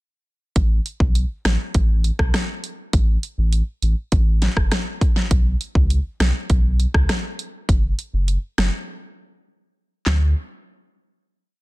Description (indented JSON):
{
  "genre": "dancehall",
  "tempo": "101 BPM",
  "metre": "4/4",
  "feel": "straight",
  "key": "unclear",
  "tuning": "A4 = 439 Hz",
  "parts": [
    { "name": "sub bass with octave", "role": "bass", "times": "0.6-10.3 s", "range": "F#1 to D2", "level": "-19 LUFS", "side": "equal", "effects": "none" },
    { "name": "pop drum kit", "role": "drums", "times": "0.6-10.2 s", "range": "handclaps, hi-hat, kick drum, rim click, snare drum", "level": "-20 LUFS", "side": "equal", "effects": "vintage 12-bit sampler grit" }
  ],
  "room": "little or no reverb",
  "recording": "dense, heavily limited modern master",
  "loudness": "-18 LUFS",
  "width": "side -20 dB against mid",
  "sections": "0.6-10.1 chorus; 10.1-11.6 final note",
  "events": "break 8.9-10.1",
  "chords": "none"
}